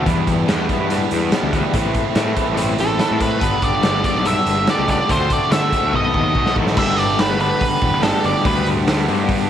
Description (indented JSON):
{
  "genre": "indie rock",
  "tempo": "143 BPM",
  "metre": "4/4",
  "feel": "straight",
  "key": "unclear",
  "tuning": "A4 = 441 Hz",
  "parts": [
    { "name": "electric guitar at the edge of break-up", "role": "riff", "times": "0.0-9.5 s", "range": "E2 to B4", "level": "-22 LUFS", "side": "left 9 dB", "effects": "tremolo" },
    { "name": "overdriven electric guitar", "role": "riff", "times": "0.0-9.5 s", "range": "E2 to G4", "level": "-24 LUFS", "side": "right 11 dB", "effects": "wide subtle chorus, slapback echo" },
    { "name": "fuzz picked electric bass", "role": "bass", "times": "0.0-9.5 s", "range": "E1 to D3", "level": "-22 LUFS", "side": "equal", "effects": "overdrive" },
    { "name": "raw garage drum kit", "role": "drums", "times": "0.1-9.4 s", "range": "crash cymbal, hi-hat, kick drum, snare drum", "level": "-21 LUFS", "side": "equal", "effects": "none" },
    { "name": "octave-fuzz lead guitar", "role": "melody", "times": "2.8-8.7 s", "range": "A4 to E5", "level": "-20 LUFS", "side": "right 1 dB", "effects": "distortion, slapback echo" }
  ],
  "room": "light reverb, studio reverb",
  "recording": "1960s-style stereo with parts hard left and right",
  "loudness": "-15 LUFS",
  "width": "side -10 dB against mid",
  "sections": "0.0-6.8 A section; 6.8-9.5 B section",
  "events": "drum fill 5.9-6.8; lead electric guitar solo 6.8-9.5",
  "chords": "0.1 Em7; 1.7 Amadd9; 3.4 Gadd9; 5.1 D7; 5.9 B7; 6.8 G",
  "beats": "| 0.06 0.48 0.90 1.32 | 1.74 2.16 2.58 3.00 | 3.42 3.84 4.26 4.68 | 5.10 5.52 5.94 6.36 | 6.78 7.20 7.62 8.04 | 8.45 8.87 9.29"
}